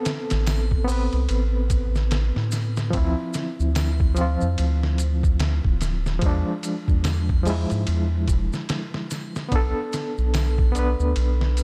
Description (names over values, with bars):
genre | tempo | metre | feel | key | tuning
trip hop | 73 BPM | 4/4 | swing 60% on 16ths | A harmonic minor | A4 = 439 Hz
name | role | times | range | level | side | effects
overdriven reed electric piano | accompaniment | 0.0-11.6 s | F3 to B4 | -30 LUFS | equal | fast tremolo, tape echo
trip hop sampler-style drum kit | drums | 0.1-11.6 s | hi-hat, kick drum, ride cymbal, snare drum | -28 LUFS | equal | studio reverb
maracas and triangle | percussion | 0.1-11.6 s | none | -43 LUFS | equal | none
round analog bass | bass | 0.3-11.6 s | D1 to A2 | -24 LUFS | equal | none
room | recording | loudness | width
little or no reverb | dark, warm production | -23 LUFS | mono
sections
0.0-11.6 A section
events
none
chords
0.0 Amadd9; 2.9 Dm9; 6.2 E7b9; 9.5 Bm7